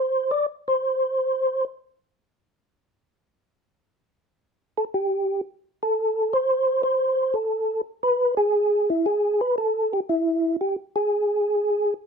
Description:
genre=jazz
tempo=116 BPM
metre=4/4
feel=swing 68% on 8ths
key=unclear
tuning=A4 = 440 Hz
part: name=percussive tonewheel organ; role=solo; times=0.0-1.6, 4.8-11.9 s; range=E4 to D5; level=-21 LUFS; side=equal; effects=slow rotary speaker, chorus vibrato
room=light reverb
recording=close, detailed microphones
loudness=-21 LUFS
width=side -6 dB against mid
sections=0.0-12.1 A section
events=none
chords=none

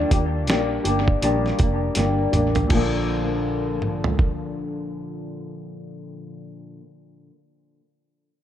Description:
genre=indie pop, bedroom pop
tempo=81 BPM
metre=4/4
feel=swing 60% on 16ths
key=Bb major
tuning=A4 = 439 Hz
part: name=flamenco guitar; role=accompaniment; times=0.0-6.9 s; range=Bb2 to A4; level=-24 LUFS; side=left 2 dB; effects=analog chorus, warbly pitch drift, low-pass filter, tape echo
part: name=vintage muted fingered electric bass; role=bass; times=0.0-6.8 s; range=F1 to Eb2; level=-26 LUFS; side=right 1 dB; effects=none
part: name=dusty soul sampler-style drum kit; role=drums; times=0.1-4.4 s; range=crash cymbal, hi-hat, kick drum, snare drum, toms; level=-23 LUFS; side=right 1 dB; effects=none
room=moderate spring reverb, RT60 2.0 s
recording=echo-heavy mix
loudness=-20 LUFS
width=side -10 dB against mid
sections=0.0-2.7 A section; 2.7-5.7 B section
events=filter sweep on nylon-string guitar 0.0-2.7; drum fill 2.0-2.7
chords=0.0 Ebmaj7; 2.7 Bbmaj7

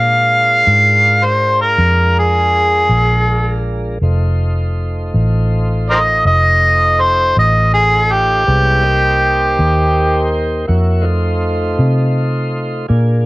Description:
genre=slow blues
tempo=54 BPM (dotted quarters)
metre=12/8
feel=straight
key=F mixolydian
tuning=A4 = 440 Hz
part: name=mellow harmonica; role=melody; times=0.0-10.3 s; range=G4 to F5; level=-12 LUFS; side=equal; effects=overdrive, cassette tape
part: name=tonewheel organ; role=sustained chords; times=0.0-13.3 s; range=Ab3 to Db5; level=-21 LUFS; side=equal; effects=slow rotary speaker, cassette tape
part: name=vintage muted fingered electric bass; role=bass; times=0.0-13.3 s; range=F1 to C3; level=-15 LUFS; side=equal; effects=none
room=light reverb, small room ambience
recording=home recording on cassette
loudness=-11 LUFS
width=side -21 dB against mid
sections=0.0-13.3 A section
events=harmonica solo 0.0-13.3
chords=0.0 Bb7; 4.0 F7; 8.5 Cm7; 10.7 F7

